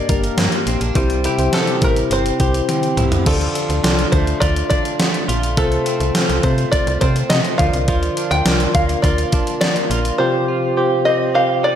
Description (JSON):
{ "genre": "1980s-style pop", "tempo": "104 BPM", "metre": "4/4", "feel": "straight", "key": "unclear", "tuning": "A4 = 439 Hz", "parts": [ { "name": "open-back banjo", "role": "melody", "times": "0.0-11.8 s", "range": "G4 to G5", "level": "-21 LUFS", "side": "equal", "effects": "none" }, { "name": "tine electric piano", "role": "accompaniment", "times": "0.0-11.8 s", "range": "G2 to D5", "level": "-21 LUFS", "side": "left 1 dB", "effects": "fast stereo tremolo, slapback echo" }, { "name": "direct-recorded clean electric guitar", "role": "riff", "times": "0.0-11.8 s", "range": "F3 to Bb4", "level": "-25 LUFS", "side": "right 4 dB", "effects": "analog chorus, digital delay, slapback echo" }, { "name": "slap-like FM bass", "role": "bass", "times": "0.1-10.1 s", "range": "G1 to C3", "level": "-20 LUFS", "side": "equal", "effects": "none" }, { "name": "gated 80s digital drum machine", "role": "drums", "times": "0.1-10.2 s", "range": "crash cymbal, hi-hat, kick drum, snare drum, toms", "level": "-19 LUFS", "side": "equal", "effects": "gated reverb, gated reverb snare, overdrive" } ], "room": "moderate lush hall reverb, RT60 1.9 s", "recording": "big arena sound", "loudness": "-15 LUFS", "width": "side -9 dB against mid", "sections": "0.0-3.3 A section; 3.3-11.8 B section", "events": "drum fill 2.7-3.3", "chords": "0.0 Gm; 1.0 C; 3.3 Dm; 5.6 F/C; 7.6 Bb; 10.2 Csus4" }